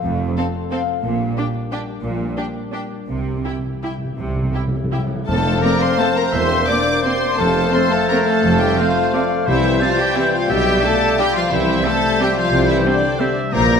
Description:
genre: classical, orchestral ballroom waltz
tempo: 156-194 BPM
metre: 3/4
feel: rubato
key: F major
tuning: A4 = 440 Hz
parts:
  - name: concert harp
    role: arpeggios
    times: 0.0-13.8 s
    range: F2 to Bb5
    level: -25 LUFS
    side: left 7 dB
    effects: none
  - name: rich symphonic cello section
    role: bass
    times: 0.0-13.8 s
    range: E2 to C3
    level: -26 LUFS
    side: right 3 dB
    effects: none
  - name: rich symphonic double bass section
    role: bass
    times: 0.0-13.8 s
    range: E1 to C2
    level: -26 LUFS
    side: right 4 dB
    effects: none
  - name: warm symphonic violin section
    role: melody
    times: 0.4-13.8 s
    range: D5 to D6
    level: -24 LUFS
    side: left 4 dB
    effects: none
  - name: warm symphonic violin section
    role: second line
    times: 0.4-13.8 s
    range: D4 to D5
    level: -24 LUFS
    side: left 2 dB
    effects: none
  - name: rich studio viola section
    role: accompaniment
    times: 0.4-13.3 s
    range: G3 to E4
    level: -27 LUFS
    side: right 3 dB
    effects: none
  - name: timpani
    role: percussion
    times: 3.1-12.0 s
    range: F2 to C3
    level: -27 LUFS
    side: equal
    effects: none
  - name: bright clarinet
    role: second line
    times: 5.3-13.8 s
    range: C5 to D5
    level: -26 LUFS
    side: left 2 dB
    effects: none
  - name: silver concert flute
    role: second line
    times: 5.3-13.8 s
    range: F6 to G6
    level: -27 LUFS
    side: equal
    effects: none
  - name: mellow bassoon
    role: accompaniment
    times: 5.3-13.8 s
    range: E3 to C4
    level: -24 LUFS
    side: right 3 dB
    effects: none
  - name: mellow French horn section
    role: sustained chords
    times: 5.3-13.8 s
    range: D3 to D4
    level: -22 LUFS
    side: left 3 dB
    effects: none
  - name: warm tuba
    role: bass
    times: 5.3-13.8 s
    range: E1 to C2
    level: -27 LUFS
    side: right 4 dB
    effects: none
  - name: clear oboe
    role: second line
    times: 5.6-13.8 s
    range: A4 to A5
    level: -26 LUFS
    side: right 2 dB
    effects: none
room: wet scoring stage reverb, RT60 1.7 s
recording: none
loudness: -16 LUFS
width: side -6 dB against mid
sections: 0.0-5.3 A section; 5.3-13.8 B section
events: timpani fill 3.1-5.3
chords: 0.0 F; 1.0 Gm/Bb; 3.1 C; 5.3 F; 6.3 C7/E; 7.4 F; 9.5 C; 10.5 G7/B; 11.5 C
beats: | 0.03 0.36 0.71 | 1.04 1.37 1.72 | 2.04 2.37 2.73 | 3.09 3.46 3.84 | 4.20 4.55 4.93 | 5.28 5.63 6.00 | 6.33 6.68 7.05 | 7.39 7.73 8.09 | 8.44 8.78 9.14 | 9.47 9.81 10.16 | 10.49 10.83 11.18 | 11.51 11.85 12.20 | 12.53 12.85 13.20 | 13.53

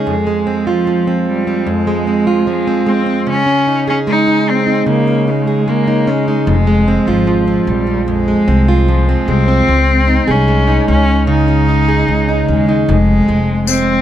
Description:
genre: acoustic pop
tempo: 75 BPM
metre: 4/4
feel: straight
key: F minor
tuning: A4 = 441 Hz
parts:
  - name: warm cello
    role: melody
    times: 0.0-14.0 s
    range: F3 to Eb4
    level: -16 LUFS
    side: left 1 dB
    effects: none
  - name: fingerpicked plugged-in steel-string acoustic guitar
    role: accompaniment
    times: 0.0-14.0 s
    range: F2 to Ab4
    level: -14 LUFS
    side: right 2 dB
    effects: none
  - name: upright bass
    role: bass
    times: 6.5-14.0 s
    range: F1 to Eb2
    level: -14 LUFS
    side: left 1 dB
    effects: none
  - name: tambourine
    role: percussion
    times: 13.7-13.9 s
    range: none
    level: -18 LUFS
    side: left 10 dB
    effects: none
room: little or no reverb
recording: close, detailed microphones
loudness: -11 LUFS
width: side -11 dB against mid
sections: 0.1-12.9 A section; 12.9-14.0 B section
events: none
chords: 0.1 Fm; 3.3 Dbsus2; 6.5 Fm; 9.7 Dbsus2; 12.9 Fm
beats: | 0.07 0.87 1.67 2.47 | 3.27 4.07 4.87 5.67 | 6.47 7.27 8.07 8.88 | 9.68 10.48 11.28 12.08 | 12.88 13.68

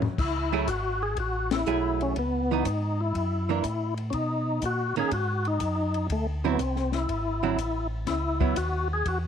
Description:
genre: soul jazz organ trio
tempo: 122 BPM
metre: 4/4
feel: swing 69% on 8ths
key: F# dorian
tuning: A4 = 440 Hz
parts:
  - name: mellow tonewheel organ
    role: bass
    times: 0.0-9.3 s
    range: G#1 to B2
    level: -30 LUFS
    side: equal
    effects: slow rotary speaker
  - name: compact cocktail drum kit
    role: drums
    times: 0.0-9.2 s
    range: crash cymbal, hi-hat, kick drum, ride cymbal, snare drum, toms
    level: -34 LUFS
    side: left 4 dB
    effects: none
  - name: percussive tonewheel organ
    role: melody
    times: 0.2-9.2 s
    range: A3 to G#4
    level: -28 LUFS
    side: left 2 dB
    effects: slow rotary speaker, chorus vibrato
  - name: archtop guitar, miked and amplified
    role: accompaniment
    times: 0.5-8.6 s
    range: D3 to G#4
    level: -29 LUFS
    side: right 13 dB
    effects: none
room: light reverb, small room ambience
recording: 1960s-style stereo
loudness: -25 LUFS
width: side -8 dB against mid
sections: 0.2-9.3 A section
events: drum fill 0.0; band accent 1.4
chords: 0.2 F#m9; 2.2 C#m9; 3.1 F#7alt; 4.1 Bmaj7; 6.1 D9; 8.1 C#madd9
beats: | 0.19 0.68 1.18 1.67 | 2.16 2.65 3.14 3.64 | 4.13 4.62 5.11 5.61 | 6.10 6.59 7.08 7.58 | 8.07 8.56 9.05

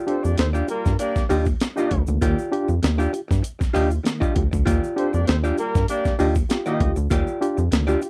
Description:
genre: funk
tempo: 98 BPM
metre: 4/4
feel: straight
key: unclear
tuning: A4 = 436 Hz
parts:
  - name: archtop guitar, miked and amplified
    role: accompaniment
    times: 0.0-8.1 s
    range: F4 to Eb5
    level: -29 LUFS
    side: equal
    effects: none
  - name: mellow horn section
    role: second line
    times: 0.1-6.9 s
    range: G3 to Eb5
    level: -28 LUFS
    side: equal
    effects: none
  - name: bright reed electric piano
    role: stabs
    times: 0.1-8.1 s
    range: Eb3 to G4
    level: -27 LUFS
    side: equal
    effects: fast tremolo
  - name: breakbeat sampler-style drum kit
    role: drums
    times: 0.1-8.1 s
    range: hi-hat, kick drum, snare drum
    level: -25 LUFS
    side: equal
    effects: none
  - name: rubbery square bass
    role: bass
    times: 0.2-8.0 s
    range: D2 to G2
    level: -24 LUFS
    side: equal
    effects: none
  - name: tube shaker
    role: percussion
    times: 0.2-8.1 s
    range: none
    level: -47 LUFS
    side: equal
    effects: none
room: little or no reverb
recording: dry, close 1970s-style studio recording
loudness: -22 LUFS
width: mono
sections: 0.0-8.1 A section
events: none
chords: 0.0 Ebmaj9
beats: 0.38 0.99 1.60 | 2.22 2.83 3.44 4.05 | 4.66 5.28 5.89 6.50 | 7.11 7.72

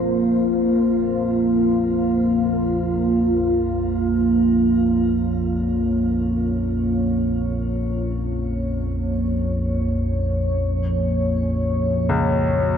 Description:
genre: dark ambient drone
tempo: free time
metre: none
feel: none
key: Bb minor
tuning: A4 = 438 Hz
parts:
  - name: deep dark ambient pad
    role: sustained chords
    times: 0.0-12.8 s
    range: Bb3 to Ab5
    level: -20 LUFS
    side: equal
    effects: chorus, built-in reverb, shimmer reverb
  - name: analog drone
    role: drone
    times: 0.0-12.8 s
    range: Bb1 to F2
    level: -24 LUFS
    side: equal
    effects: chorus
  - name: clear baby grand piano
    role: arpeggios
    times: 12.1-12.8 s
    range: Db2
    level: -22 LUFS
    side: left 3 dB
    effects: shimmer reverb
room: wet huge ambient reverb, RT60 8.9 s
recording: dark, warm production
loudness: -18 LUFS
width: side -8 dB against mid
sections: 0.0-12.8 A section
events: fade-in on synth drone 0.0-12.8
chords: 0.0 Bbm; 10.6 Gb/Bb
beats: free time

